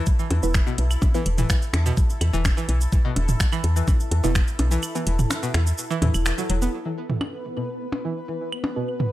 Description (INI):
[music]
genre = minimal techno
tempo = 126 BPM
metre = 4/4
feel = straight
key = unclear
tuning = A4 = 440 Hz
[part]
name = string-like resonator pluck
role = riff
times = 0.0-8.8 s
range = B2 to B3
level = -30 LUFS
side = equal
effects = chorus, vintage 12-bit sampler grit, sidechain pumping, digital delay
[part]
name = bubbling stepped-filter texture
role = texture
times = 0.0-9.1 s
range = B3 to B4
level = -33 LUFS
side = left 1 dB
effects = chorus, built-in reverb, sidechain pumping
[part]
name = electronic kick drum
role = drums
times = 0.1-4.5 s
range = none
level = -20 LUFS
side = equal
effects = studio reverb
[part]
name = garage drum kit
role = drums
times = 0.1-6.7 s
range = finger snaps, hi-hat, shaker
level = -29 LUFS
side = right 1 dB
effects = studio reverb
[part]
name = woody FM bass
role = bass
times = 0.3-6.7 s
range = E1 to E2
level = -21 LUFS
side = equal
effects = sidechain pumping
[part]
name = electronic percussion blips, claves and toms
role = percussion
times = 0.3-9.1 s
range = none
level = -28 LUFS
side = right 1 dB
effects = overdrive, studio reverb, digital delay
[part]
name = filtered dub chord stab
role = stabs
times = 0.4-1.2, 4.2-5.0, 8.0-8.8 s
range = B3 to B4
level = -30 LUFS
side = right 2 dB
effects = phaser, analog chorus, digital delay
[sound]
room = digital ambience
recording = none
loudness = -20 LUFS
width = side -15 dB against mid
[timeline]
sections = 0.0-6.7 A section; 6.7-9.1 B section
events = drop 0.0-6.7; kick drops out 4.8-6.7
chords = 0.0 E5